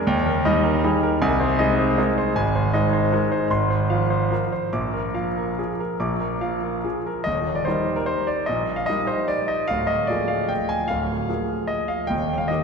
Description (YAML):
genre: classical, piano waltz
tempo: 137-162 BPM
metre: 3/4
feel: rubato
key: Eb major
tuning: A4 = 441 Hz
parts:
  - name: clear concert grand piano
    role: solo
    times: 0.0-12.6 s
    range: D1 to D6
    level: -20 LUFS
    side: equal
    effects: none
room: wet church reverb, RT60 2.7 s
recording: minimal, uncompressed stereo recording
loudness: -20 LUFS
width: side -5 dB against mid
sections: 0.0-7.3 A section; 7.3-12.6 B section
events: none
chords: 0.1 Eb; 1.2 Ab/C; 2.4 Ab; 3.5 Fm/Ab; 4.7 Bb; 7.3 Eb; 9.7 Bb7/D; 12.1 Eb